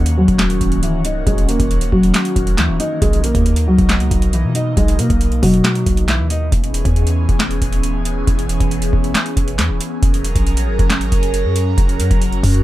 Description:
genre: hip hop, trap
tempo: 137 BPM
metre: 4/4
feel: half-time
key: Eb phrygian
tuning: A4 = 440 Hz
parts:
  - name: nylon-string guitar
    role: melody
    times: 0.0-6.5 s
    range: Fb3 to Eb5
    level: -18 LUFS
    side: equal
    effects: low-pass filter, ping-pong delay
  - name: airy breathy pad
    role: sustained chords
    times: 0.0-12.6 s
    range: B2 to Bb4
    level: -23 LUFS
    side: right 1 dB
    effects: chorus, phaser
  - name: warm 808-style bass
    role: bass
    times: 0.0-12.6 s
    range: Db1 to B2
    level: -18 LUFS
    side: equal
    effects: none
  - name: booming analog drum machine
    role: drums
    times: 0.1-12.6 s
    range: handclaps, hi-hat, kick drum, snare drum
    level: -17 LUFS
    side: equal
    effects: overdrive
room: light reverb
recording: none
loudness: -13 LUFS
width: side -15 dB against mid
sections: 0.0-12.6 A section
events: filter sweep on nylon-string guitar 0.0-6.5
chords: 0.0 Ebm7; 3.0 Bmaj7; 6.5 E6; 10.0 Gbadd9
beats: 0.39 0.83 | 1.27 1.71 2.14 2.58 | 3.02 3.46 3.89 4.33 | 4.77 5.21 5.65 6.08 | 6.52 6.96 7.40 7.84 | 8.27 8.71 9.15 9.59 | 10.03 10.46 10.90 11.34 | 11.78 12.22

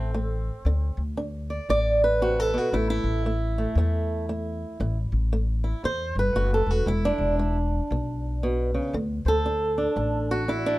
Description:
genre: acoustic country blues, solo or duo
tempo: 116 BPM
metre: 4/4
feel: swing 62% on 8ths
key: unclear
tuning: A4 = 440 Hz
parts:
  - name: fingerpicked swing-style acoustic guitar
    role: melody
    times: 0.0-10.8 s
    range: E2 to D5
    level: -25 LUFS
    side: right 1 dB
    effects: none
  - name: upright bass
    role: bass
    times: 0.0-10.8 s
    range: E1 to E2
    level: -26 LUFS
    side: equal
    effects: none
room: little or no reverb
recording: close, detailed microphones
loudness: -23 LUFS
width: side -18 dB against mid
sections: 0.0-10.8 A section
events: none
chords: 0.0 D5; 2.7 A5; 6.9 E7; 8.9 D7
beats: 0.13 | 0.65 1.17 1.69 2.21 | 2.73 3.25 3.76 4.28 | 4.80 5.32 5.83 6.35 | 6.87 7.39 7.90 8.42 | 8.94 9.45 9.97 10.49

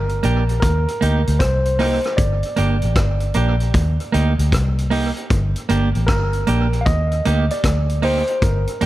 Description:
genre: roots reggae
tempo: 77 BPM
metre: 4/4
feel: swing 65% on 16ths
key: unclear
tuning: A4 = 441 Hz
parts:
  - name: tine electric piano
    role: melody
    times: 0.0-8.9 s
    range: Bb4 to F5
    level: -24 LUFS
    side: equal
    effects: overdrive, tape echo
  - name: vintage muted fingered electric bass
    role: bass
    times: 0.0-8.9 s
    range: G1 to Eb2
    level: -18 LUFS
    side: equal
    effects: none
  - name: vintage drum kit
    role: drums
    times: 0.1-8.9 s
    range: hi-hat, kick drum, rim click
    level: -23 LUFS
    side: equal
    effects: tape echo
  - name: clean electric guitar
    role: accompaniment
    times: 0.2-8.9 s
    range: Bb3 to G4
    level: -23 LUFS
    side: right 4 dB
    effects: spring reverb, tape echo
room: little or no reverb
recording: none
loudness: -16 LUFS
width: side -15 dB against mid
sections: 0.0-8.9 A section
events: none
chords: 0.0 Gm; 0.6 Eb; 2.2 Gm; 3.7 Eb; 5.3 Gm; 6.9 Eb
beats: 0.62 1.40 | 2.18 2.96 3.74 4.52 | 5.30 6.08 6.86 7.64 | 8.42

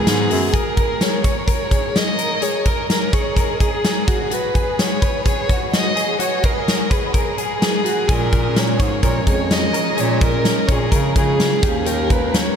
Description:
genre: jangly indie pop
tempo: 127 BPM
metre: 4/4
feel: straight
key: unclear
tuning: A4 = 440 Hz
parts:
  - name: dark violin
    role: melody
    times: 0.0-12.6 s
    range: G#4 to D#5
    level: -22 LUFS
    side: right 1 dB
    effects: ping-pong delay
  - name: electric guitar through a small old amp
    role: accompaniment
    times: 0.0-0.5, 8.1-12.6 s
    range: G#2 to G4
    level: -26 LUFS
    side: right 4 dB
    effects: none
  - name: warm upright piano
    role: accompaniment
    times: 0.0-0.6 s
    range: none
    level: barely audible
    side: none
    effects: none
  - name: direct-recorded clean electric guitar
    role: arpeggios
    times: 0.0-12.5 s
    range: F#4 to C#5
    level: -24 LUFS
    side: left 2 dB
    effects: ensemble chorus, ping-pong delay
  - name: bright bass clarinet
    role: bass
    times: 0.0-0.5, 8.1-12.4 s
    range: D#2 to C#3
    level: -22 LUFS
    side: equal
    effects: none
  - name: big rock drum kit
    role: drums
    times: 0.1-12.5 s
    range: hi-hat, kick drum, snare drum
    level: -19 LUFS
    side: equal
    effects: none
room: moderate huge ambient reverb, RT60 7.5 s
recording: dreamy mix soaked in reverb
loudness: -16 LUFS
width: side -7 dB against mid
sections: 0.5-12.6 A section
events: none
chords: 0.0 G#m; 0.5 A#m7; 4.1 G#7(no3); 8.1 A#m7; 11.6 D#7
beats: 0.07 | 0.54 1.01 1.48 1.95 | 2.42 2.89 3.37 3.84 | 4.31 4.78 5.25 5.73 | 6.20 6.67 7.15 7.62 | 8.09 8.56 9.04 9.51 | 9.98 10.45 10.93 11.40 | 11.87 12.34

